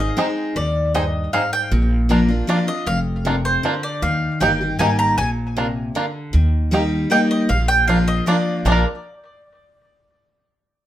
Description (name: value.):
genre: bluegrass.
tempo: 156 BPM.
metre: 3/4.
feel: straight.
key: Bb mixolydian.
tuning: A4 = 441 Hz.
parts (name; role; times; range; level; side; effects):
mandolin; melody; 0.0-8.8 s; C5 to Bb5; -21 LUFS; right 1 dB; tape echo.
picked steel-string acoustic guitar; accompaniment; 0.0-8.8 s; F2 to Ab4; -21 LUFS; left 1 dB; none.
upright bass; bass; 0.0-8.8 s; F1 to Eb2; -20 LUFS; equal; none.
bluegrass banjo; melody; 0.2-8.9 s; Bb3 to Bb4; -22 LUFS; right 1 dB; none.
room: moderate studio reverb, RT60 0.6 s.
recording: none.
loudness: -16 LUFS.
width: side -12 dB against mid.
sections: 0.0-6.3 A section; 6.3-8.7 B section; 8.7-9.8 C section.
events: none.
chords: 0.0 Ab; 1.7 Bb; 4.0 Eb; 5.2 Bb; 6.3 Eb; 7.5 Bb.